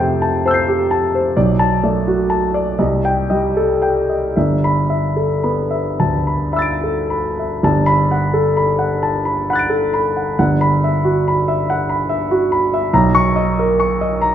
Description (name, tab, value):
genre	classical, impressionist solo piano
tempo	35-48 BPM (dotted quarters)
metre	6/8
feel	rubato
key	G major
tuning	A4 = 440 Hz
part	warm grand piano	solo	0.0-14.3 s	G1 to D7	-14 LUFS	equal	none
room	wet recital hall reverb, RT60 1.5 s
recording	minimal, uncompressed stereo recording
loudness	-14 LUFS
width	side -10 dB against mid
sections	0.0-7.6 A section; 7.6-14.3 B section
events	none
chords	0.0 Am7/F; 1.4 Bm7; 2.8 Cm6; 4.3 G69; 7.6 Gmaj9; 10.4 Emadd9/G; 12.9 Bmaj9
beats	| 1.36 2.78 | 4.35 5.99 | 7.63 9.02 | 10.37 11.66 | 12.92 14.20